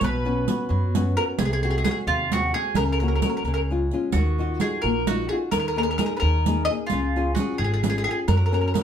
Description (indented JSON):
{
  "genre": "italian folk, Italian serenade",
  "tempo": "87 BPM (dotted quarters)",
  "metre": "6/8",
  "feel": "straight",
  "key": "unclear",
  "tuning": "A4 = 438 Hz",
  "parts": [
    { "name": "mandolin", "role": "melody", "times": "0.0-8.8 s", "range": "E#4 to D#5", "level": "-26 LUFS", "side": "right 1 dB", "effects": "none" },
    { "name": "nylon-string guitar", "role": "accompaniment", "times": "0.0-8.8 s", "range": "B2 to A#4", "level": "-27 LUFS", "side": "left 4 dB", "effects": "none" },
    { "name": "upright bass", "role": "bass", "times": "0.0-8.7 s", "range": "G#1 to F#2", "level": "-24 LUFS", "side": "equal", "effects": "none" },
    { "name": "riq", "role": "percussion", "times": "0.0-8.8 s", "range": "none", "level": "-28 LUFS", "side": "right 5 dB", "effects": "none" }
  ],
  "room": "wet studio reverb, RT60 0.6 s",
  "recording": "heard from further back in the room",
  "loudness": "-21 LUFS",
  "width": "side -8 dB against mid",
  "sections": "0.0-8.8 A section",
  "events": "none",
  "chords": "0.0 Bsus2; 1.4 G#7/B#; 2.8 F#/C#; 3.4 C#; 4.1 D#madd9; 5.5 G#sus2/D#; 6.9 C#; 8.3 F#"
}